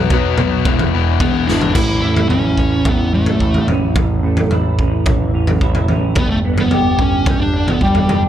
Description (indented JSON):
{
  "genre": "quiet-loud alternative rock",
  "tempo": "109 BPM",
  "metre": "4/4",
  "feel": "straight",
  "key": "unclear",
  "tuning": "A4 = 440 Hz",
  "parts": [
    { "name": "electric guitar through a small old amp", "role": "arpeggios", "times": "0.0-8.3 s", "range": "E2 to G4", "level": "-22 LUFS", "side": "right 2 dB", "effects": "ensemble chorus" },
    { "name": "overdriven electric guitar", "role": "riff", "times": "0.0-1.8 s", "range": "E2 to B3", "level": "-18 LUFS", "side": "left 13 dB", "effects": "none" },
    { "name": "growling picked electric bass", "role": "bass", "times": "0.0-8.3 s", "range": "E1 to B1", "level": "-20 LUFS", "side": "equal", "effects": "overdrive" },
    { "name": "raw garage drum kit", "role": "drums", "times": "0.1-8.2 s", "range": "crash cymbal, kick drum, snare drum, toms", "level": "-16 LUFS", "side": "equal", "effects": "none" },
    { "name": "fuzz lead guitar", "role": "melody", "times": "1.2-8.2 s", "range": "G3 to E4", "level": "-18 LUFS", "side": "equal", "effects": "distortion, plate reverb" }
  ],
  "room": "light reverb",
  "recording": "none",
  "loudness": "-13 LUFS",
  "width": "side -10 dB against mid",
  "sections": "0.0-1.8 A section; 1.8-8.3 B section",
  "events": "drum fill 1.5",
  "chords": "0.0 B5; 0.7 E; 1.8 A; 6.2 G"
}